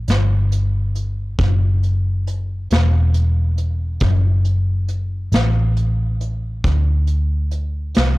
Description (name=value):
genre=slow blues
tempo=46 BPM (dotted quarters)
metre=12/8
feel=straight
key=D mixolydian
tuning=A4 = 440 Hz
part: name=vintage muted fingered electric bass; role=bass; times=0.0-8.2 s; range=E1 to D2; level=-17 LUFS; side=equal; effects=tube saturation
part: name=vintage brush drum kit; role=drums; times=0.1-8.2 s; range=hi-hat, kick drum, snare drum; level=-21 LUFS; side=equal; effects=none
room=little or no reverb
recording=blown-out, overdriven recording, overdrive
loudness=-16 LUFS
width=side -20 dB against mid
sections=0.0-8.2 A section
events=none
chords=none